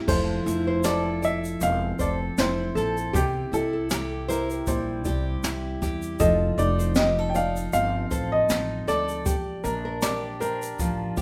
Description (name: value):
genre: acoustic pop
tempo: 78 BPM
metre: 4/4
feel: swing 55% on 16ths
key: F major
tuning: A4 = 439 Hz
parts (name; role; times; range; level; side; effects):
- picked steel-string acoustic guitar; accompaniment; 0.0-11.2 s; C3 to A4; -31 LUFS; equal; none
- warm upright piano; melody; 0.1-11.2 s; G4 to G5; -30 LUFS; equal; none
- nylon-string guitar; arpeggios; 0.1-11.2 s; G4 to D5; -35 LUFS; equal; none
- upright bass; bass; 0.1-11.2 s; E1 to E2; -33 LUFS; equal; none
- jazz brush drum kit; drums; 0.1-11.2 s; crash cymbal, kick drum, shaker, snare drum; -31 LUFS; equal; none
room: moderate large studio reverb, RT60 1.0 s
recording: band playing live in one room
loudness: -25 LUFS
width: mono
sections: 0.1-11.2 A section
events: none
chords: 0.1 Fmaj7; 3.1 C; 6.2 F7; 9.3 Bb6